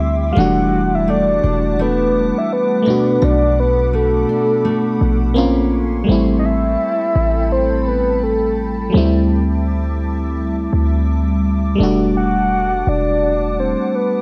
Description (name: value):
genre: contemporary R&B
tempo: 84 BPM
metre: 4/4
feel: swing 58% on 16ths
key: A dorian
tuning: A4 = 442 Hz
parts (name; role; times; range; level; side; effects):
- soft octave-layered synth lead; melody; 0.0-14.2 s; A4 to F#5; -20 LUFS; equal; chorus
- FM electric piano; accompaniment; 0.0-14.2 s; F#3 to F#4; -21 LUFS; equal; chorus
- glassy FM pad; sustained chords; 0.0-14.2 s; G3 to D6; -30 LUFS; equal; ensemble chorus, built-in reverb
- fingerpicked steel-string acoustic guitar; arpeggios; 0.0-6.2 s; B2 to D4; -24 LUFS; equal; none
- warm 808-style bass; bass; 0.0-13.8 s; E1 to D2; -21 LUFS; equal; none
room: moderate studio reverb, RT60 0.5 s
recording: cassette tape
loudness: -16 LUFS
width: mono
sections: 0.0-6.1 A section; 6.1-14.2 B section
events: none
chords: 0.4 Em11; 2.9 Bm7; 5.4 Bbm9; 6.1 Am9; 8.9 D9sus4; 11.8 Em11